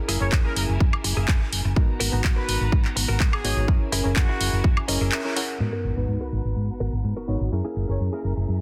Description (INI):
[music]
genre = filtered disco house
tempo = 125 BPM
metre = 4/4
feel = straight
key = G# minor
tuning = A4 = 440 Hz
[part]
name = reed electric piano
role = accompaniment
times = 0.0-8.6 s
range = B3 to A#5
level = -34 LUFS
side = equal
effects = fast tremolo, phaser, sidechain pumping, low-pass filter
[part]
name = clear symphonic string section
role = sustained chords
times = 0.0-8.6 s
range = B3 to A#5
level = -42 LUFS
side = equal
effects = sidechain pumping, low-pass filter
[part]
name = direct-recorded clean electric guitar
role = riff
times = 0.1-8.4 s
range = A#3 to F#5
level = -36 LUFS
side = equal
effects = vintage 12-bit sampler grit, sidechain pumping, low-pass filter
[part]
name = hollow-body short-scale fingered electric bass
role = bass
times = 0.1-8.6 s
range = F#1 to G#2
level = -28 LUFS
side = equal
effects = sidechain pumping, low-pass filter
[part]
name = house drum kit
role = drums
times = 0.1-5.5 s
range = handclaps, hi-hat, woodblock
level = -30 LUFS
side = equal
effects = sidechain pumping on hats, low-pass filter on hats, low-pass filter on snare, sidechain pumping on perc, low-pass filter on perc, low-pass filter on room
[part]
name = clear trumpet section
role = melody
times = 0.2-8.3 s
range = F#4 to C#5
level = -36 LUFS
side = equal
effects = vintage 12-bit sampler grit, sidechain pumping, low-pass filter, tape echo
[part]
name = electronic kick drum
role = drums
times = 0.3-4.7 s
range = none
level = -23 LUFS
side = equal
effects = none
[part]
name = sub drop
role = sound effects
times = 5.6-7.5 s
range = none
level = -36 LUFS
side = equal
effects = none
[sound]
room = little or no reverb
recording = dense, heavily limited modern master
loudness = -23 LUFS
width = mono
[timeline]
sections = 0.0-5.6 A section; 5.6-8.6 B section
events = clean electric guitar fill 4.6-5.6; break 5.1-5.6; band accent 5.1; impact 5.6-7.5; filter sweep 5.6-8.6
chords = 0.0 F#9; 1.8 G#m9; 3.7 F#9; 5.6 G#m9; 7.5 F#9